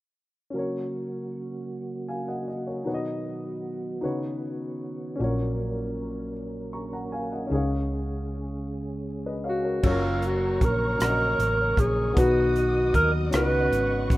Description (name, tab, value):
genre	slow gospel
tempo	52 BPM (dotted quarters)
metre	6/8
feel	straight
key	F# major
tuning	A4 = 440 Hz
part	dark baby grand piano	accompaniment	0.5-14.2 s	A#2 to C#6	-31 LUFS	left 2 dB	none
part	percussive tonewheel organ	sustained chords	0.5-14.2 s	C#3 to A#4	-32 LUFS	right 1 dB	slow rotary speaker, chorus vibrato
part	hollow-body short-scale fingered electric bass	bass	5.2-14.2 s	F#1 to D#2	-29 LUFS	equal	none
part	breathy alto saxophone	melody	9.5-14.2 s	E#4 to B4	-24 LUFS	equal	none
part	warm studio string section	sustained chords	9.8-14.2 s	C#5 to D#6	-36 LUFS	left 2 dB	none
part	crisp fusion drum kit	drums	9.8-14.2 s	crash cymbal, hi-hat, kick drum, rim click	-27 LUFS	equal	none
room	light reverb, small room ambience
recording	rough home demo mix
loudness	-24 LUFS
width	side -17 dB against mid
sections	0.5-9.8 A section; 9.8-14.2 B section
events	none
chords	0.5 F#; 2.9 B; 4.0 C#9sus4; 5.2 F#/A#; 7.5 C#; 9.8 F#; 12.2 B; 13.3 C#9sus4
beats	| 0.53 1.70 | 2.86 4.03 | 5.19 6.35 | 7.51 8.68 | 9.84 11.00 | 12.17 13.33